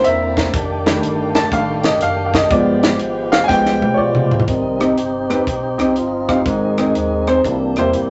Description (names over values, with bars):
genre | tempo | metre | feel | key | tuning
uptempo gospel | 121 BPM | 4/4 | swing 66% on 8ths | C minor from 4.5 s | A4 = 440 Hz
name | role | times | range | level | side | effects
warm grand piano | accompaniment | 0.0-8.1 s | Ab2 to A5 | -19 LUFS | equal | none
dark studio string section | sustained chords | 0.0-4.5 s | Ab3 to Bb5 | -34 LUFS | equal | none
tonewheel organ | sustained chords | 0.0-8.1 s | D3 to G4 | -23 LUFS | equal | overdrive, stopped rotary speaker
fingered electric bass | bass | 0.0-8.1 s | E1 to E2 | -30 LUFS | equal | none
crisp fusion drum kit | drums | 0.0-8.1 s | hi-hat, kick drum, rim click, snare drum, toms | -22 LUFS | equal | none
room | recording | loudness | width
wet studio reverb, RT60 0.6 s | nothing above 8.0 kHz | -17 LUFS | mono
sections
0.0-4.5 A section; 4.5-8.1 B section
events
grand piano solo 0.0-4.5; drum fill 3.5-4.5; tonewheel organ solo 4.5-8.1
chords
0.0 C9; 0.5 F13; 2.5 G7b9; 4.5 Cm; 6.5 Ab; 7.5 C7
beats
0.04 | 0.54 1.03 1.52 2.01 | 2.51 3.00 3.49 3.99 | 4.48 4.98 5.47 5.97 | 6.46 6.96 7.45 7.95